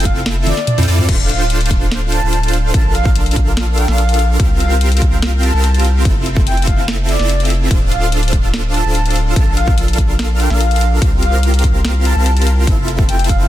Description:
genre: future bass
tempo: 145 BPM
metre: 4/4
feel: half-time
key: F major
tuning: A4 = 440 Hz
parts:
  - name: supersaw chords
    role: riff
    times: 0.0-13.5 s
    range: C4 to G5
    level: -20 LUFS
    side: right 1 dB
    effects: sidechain pumping, dub echo
  - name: saturated sub bass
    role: bass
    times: 0.0-13.5 s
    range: D1 to F2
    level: -15 LUFS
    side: equal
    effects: sidechain pumping
  - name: trap drum kit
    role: drums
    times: 0.0-13.4 s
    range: crash cymbal, hi-hat, ride cymbal, snare drum, toms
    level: -23 LUFS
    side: left 1 dB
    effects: none
  - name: breathy flute-like synth lead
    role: melody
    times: 0.1-13.5 s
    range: D5 to A5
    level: -23 LUFS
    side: equal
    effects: analog chorus, sidechain pumping, dub echo
  - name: electronic kick drum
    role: drums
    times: 0.1-13.4 s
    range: none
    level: -15 LUFS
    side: equal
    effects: none
room: little or no reverb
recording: dense, heavily limited modern master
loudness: -12 LUFS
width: side -13 dB against mid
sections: 0.0-1.1 A section; 1.1-13.5 A section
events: drop 0.0-1.1, 1.1-13.5; drum fill 0.5-1.1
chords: 0.0 Fmaj7; 1.1 Dm7; 2.7 Bbmaj7; 4.4 C7sus4; 6.1 Fmaj7; 7.7 Dm7; 9.4 Bbmaj7; 11.0 C7sus4; 12.7 Fmaj7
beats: 0.26 0.67 | 1.09 1.50 1.91 2.33 | 2.74 3.16 3.57 3.98 | 4.40 4.81 5.22 5.64 | 6.05 6.47 6.88 7.29 | 7.71 8.12 8.54 8.95 | 9.36 9.78 10.19 10.60 | 11.02 11.43 11.85 12.26 | 12.67 13.09

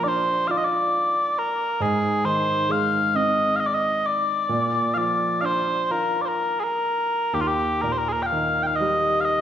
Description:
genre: celtic folk, Celtic slow air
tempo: 41-46 BPM (dotted quarters)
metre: 6/8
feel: rubato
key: unclear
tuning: A4 = 440 Hz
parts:
  - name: mellow small bagpipes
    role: melody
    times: 0.0-9.4 s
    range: F4 to G5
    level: -21 LUFS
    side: left 1 dB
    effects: none
  - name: felt-muted upright piano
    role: accompaniment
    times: 0.0-9.4 s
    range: Eb2 to F4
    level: -27 LUFS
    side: right 2 dB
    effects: none
room: wet recital hall reverb, RT60 1.6 s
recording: recorded in a church or concert hall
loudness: -20 LUFS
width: side -10 dB against mid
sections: 0.0-9.4 A section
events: none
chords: 0.0 Bb; 1.8 Ab; 4.5 Bb; 7.3 Eb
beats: 0.48 | 1.80 3.14 | 4.50 5.90 | 7.34 8.80

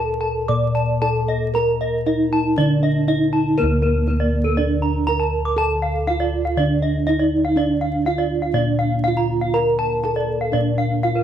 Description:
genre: Balinese gamelan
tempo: 121 BPM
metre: 4/4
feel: straight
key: D pelog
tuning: A4 = 439 Hz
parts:
  - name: gamelan-type bronze metallophone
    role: melody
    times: 0.0-11.2 s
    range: Bb3 to D5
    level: -22 LUFS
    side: right 3 dB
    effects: none
  - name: gamelan-type bronze metallophone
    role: arpeggios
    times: 0.0-11.2 s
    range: A4 to D6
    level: -24 LUFS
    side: equal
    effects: none
  - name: gamelan-type bossed gongs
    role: bass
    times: 0.0-11.2 s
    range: D2 to Bb4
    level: -21 LUFS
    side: left 1 dB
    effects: none
room: light reverb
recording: vinyl crackle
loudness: -17 LUFS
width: side -10 dB against mid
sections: 0.0-3.6 A section; 3.6-11.2 B section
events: none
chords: none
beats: 0.49 1.02 | 1.55 2.07 2.58 3.09 | 3.59 4.09 4.58 5.08 | 5.57 6.07 6.57 7.06 | 7.56 8.05 8.55 9.05 | 9.54 10.04 10.53 11.03

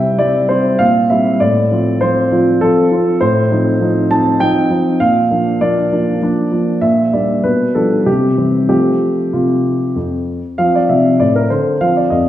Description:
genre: classical-period piano sonatina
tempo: 99 BPM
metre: 3/4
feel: straight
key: F major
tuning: A4 = 440 Hz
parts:
  - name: warm grand piano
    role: solo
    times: 0.0-12.3 s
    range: F2 to A5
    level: -12 LUFS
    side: equal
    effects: none
room: wet recital hall reverb, RT60 1.4 s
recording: heard from further back in the room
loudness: -12 LUFS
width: side -12 dB against mid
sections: 0.0-10.6 A section; 10.6-12.3 A section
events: none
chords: 0.0 C; 0.8 C7/Bb; 1.4 F/A; 3.2 F7/A; 5.0 Bb; 6.8 Gm/Bb; 7.4 G7/B; 8.1 C; 8.7 F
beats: 0.18 0.79 | 1.40 2.00 2.61 | 3.21 3.81 4.41 | 5.01 5.61 6.22 | 6.83 7.44 8.06 | 8.69 9.33 9.96 | 10.59 11.20 11.81

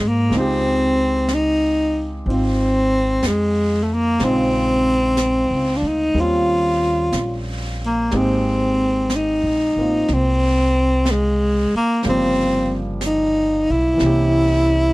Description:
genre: jazz ballad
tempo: 62 BPM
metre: 4/4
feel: swing 68% on 8ths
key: unclear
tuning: A4 = 440 Hz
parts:
  - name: warm tenor saxophone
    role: melody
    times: 0.0-14.9 s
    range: Ab3 to F4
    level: -17 LUFS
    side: equal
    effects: none
  - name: warm grand piano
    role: accompaniment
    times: 0.0-14.9 s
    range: C3 to Ab4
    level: -26 LUFS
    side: right 1 dB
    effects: none
  - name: upright bass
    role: bass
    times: 0.0-14.9 s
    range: G1 to Ab2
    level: -23 LUFS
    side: equal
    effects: none
  - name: jazz brush drum kit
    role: drums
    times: 0.3-14.9 s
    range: brushed snare drum, hi-hat, snare drum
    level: -32 LUFS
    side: right 1 dB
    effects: none
room: little or no reverb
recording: dry, close 1970s-style studio recording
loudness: -16 LUFS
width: side -20 dB against mid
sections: 0.0-14.9 A section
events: none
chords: 0.3 Dbmaj9#11; 4.2 Bbm11; 6.1 Eb13; 8.1 Abmaj9; 12.0 Gm7b5; 14.0 C7b9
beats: | 0.30 1.27 2.25 3.22 | 4.19 5.17 6.15 7.13 | 8.11 9.10 10.08 11.06 | 12.04 13.01 13.99

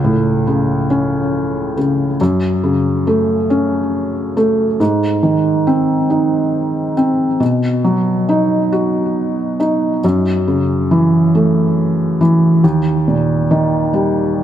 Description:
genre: pop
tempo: 46 BPM (dotted quarters)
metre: 6/8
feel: straight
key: unclear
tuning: A4 = 442 Hz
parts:
  - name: felt-muted upright piano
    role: solo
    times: 0.0-14.4 s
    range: C#2 to F#4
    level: -13 LUFS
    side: equal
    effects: ping-pong delay
room: moderate echo chamber reverb, RT60 1.7 s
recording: none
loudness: -13 LUFS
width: side -10 dB against mid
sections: 0.0-14.4 A section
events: none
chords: 0.0 A/C#; 2.2 F#m; 4.8 G#; 7.4 B; 10.0 F#m7; 12.6 D#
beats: 0.90 | 2.20 3.50 | 4.80 6.10 | 7.41 8.73 | 10.04 11.34 | 12.64 13.94

